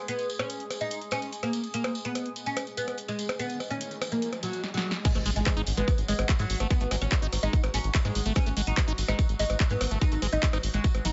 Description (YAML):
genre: psychedelic trance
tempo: 145 BPM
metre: 4/4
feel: straight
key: G# minor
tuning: A4 = 439 Hz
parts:
  - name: overtone-sweeping drone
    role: sustained chords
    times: 0.0-11.1 s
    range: F#3 to G#4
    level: -44 LUFS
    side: equal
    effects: chorus, built-in reverb, phaser, sidechain pumping
  - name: oud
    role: melody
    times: 0.1-11.1 s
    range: F#3 to F#4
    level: -35 LUFS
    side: equal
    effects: phaser, sidechain pumping, tape echo
  - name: techno drum kit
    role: drums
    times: 0.1-11.1 s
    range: crash cymbal, handclaps, hi-hat, percussion blips, snare drum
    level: -36 LUFS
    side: equal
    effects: none
  - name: tambourine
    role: percussion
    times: 0.1-11.1 s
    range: none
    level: -44 LUFS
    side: equal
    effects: none
  - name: riser and impact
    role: sound effects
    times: 3.5-6.7 s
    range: none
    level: -43 LUFS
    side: equal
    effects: none
  - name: liquid acid bass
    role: riff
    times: 5.0-11.1 s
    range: F#3 to D#4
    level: -38 LUFS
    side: equal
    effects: phaser, sidechain pumping, digital delay
  - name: electronic kick drum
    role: drums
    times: 5.0-10.9 s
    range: none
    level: -28 LUFS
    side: equal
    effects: none
  - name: round analog bass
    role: bass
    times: 5.2-11.1 s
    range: G#1 to G#2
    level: -31 LUFS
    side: equal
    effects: tube saturation
room: little or no reverb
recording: nothing above 7.7 kHz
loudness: -28 LUFS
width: mono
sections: 0.0-5.0 A section; 5.0-11.1 B section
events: drum fill 4.6-5.0; drop 5.0-11.1; impact 5.0-6.7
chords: 0.0 N.C.; 5.0 G#5